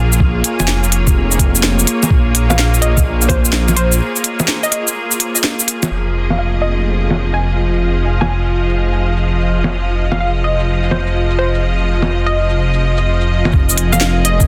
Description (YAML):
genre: future garage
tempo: 126 BPM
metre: 4/4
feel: swing 66% on 16ths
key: F minor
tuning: A4 = 440 Hz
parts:
  - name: glassy wavetable pluck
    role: melody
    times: 0.0-14.5 s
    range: C5 to Ab5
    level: -25 LUFS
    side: equal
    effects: chorus, tape echo
  - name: clear symphonic string section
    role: sustained chords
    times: 0.0-14.5 s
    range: F3 to Eb5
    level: -23 LUFS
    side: equal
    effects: sidechain pumping
  - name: swelling detuned saw bass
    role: bass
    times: 0.0-14.5 s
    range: F1 to Bb1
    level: -18 LUFS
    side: equal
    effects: sidechain pumping
  - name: wind-like tuned noise texture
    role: texture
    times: 0.0-14.5 s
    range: Bb3 to F5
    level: -32 LUFS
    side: equal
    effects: built-in reverb
  - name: organic electronic drum kit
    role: drums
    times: 0.1-14.5 s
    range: bongos, hi-hat, shaker, snare drum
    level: -18 LUFS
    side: equal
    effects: low-pass filter on perc, low-pass filter on hats, low-pass filter on snare, low-pass filter on room
  - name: electronic kick drum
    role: drums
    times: 0.2-3.4, 13.5-14.5 s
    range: none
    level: -15 LUFS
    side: equal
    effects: none
room: light reverb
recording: dense, heavily limited modern master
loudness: -15 LUFS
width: mono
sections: 0.0-5.9 A section; 5.9-13.5 B section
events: break 4.0-5.9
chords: 0.0 Bbm7; 5.9 Fm7